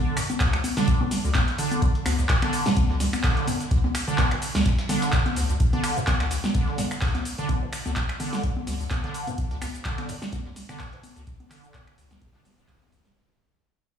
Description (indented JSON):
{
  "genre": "acid house",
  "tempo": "127 BPM",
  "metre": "4/4",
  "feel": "swing 55% on 16ths",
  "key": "unclear",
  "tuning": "A4 = 440 Hz",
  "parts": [
    { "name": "liquid acid bass", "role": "riff", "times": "0.0-13.0 s", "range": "D2 to D3", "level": "-28 LUFS", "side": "right 1 dB", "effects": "overdrive, analog chorus, sidechain pumping, tape echo" },
    { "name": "dusty soul sampler-style drum kit", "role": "drums", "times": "0.2-13.2 s", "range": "hi-hat, snare drum, tambourine", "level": "-41 LUFS", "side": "left 1 dB", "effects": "high-pass filter on snare, high-pass filter on perc, high-pass filter on hats, high-pass filter on room" },
    { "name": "electro analog drum machine", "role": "drums", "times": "0.2-13.1 s", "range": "cabasa, congas, finger snaps, handclaps, hi-hat, snare drum", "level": "-28 LUFS", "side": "equal", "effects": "overdrive" },
    { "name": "electronic kick drum", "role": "drums", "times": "0.4-12.8 s", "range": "none", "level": "-25 LUFS", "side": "equal", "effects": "none" }
  ],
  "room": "light reverb",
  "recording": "played on a big sound system in a bare room, stone room reverb, studio reverb",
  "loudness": "-22 LUFS",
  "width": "side -8 dB against mid",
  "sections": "0.0-13.2 A section",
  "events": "drop 0.0-13.2; fade-out 5.6-13.2",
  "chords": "none",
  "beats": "0.40 0.88 1.35 | 1.82 2.29 2.77 3.24 | 3.71 4.18 4.66 5.13 | 5.60 6.07 6.54 7.02 | 7.49 7.96 8.44 8.91 | 9.38 9.85 10.32 10.80 | 11.27 11.74 12.21 12.69"
}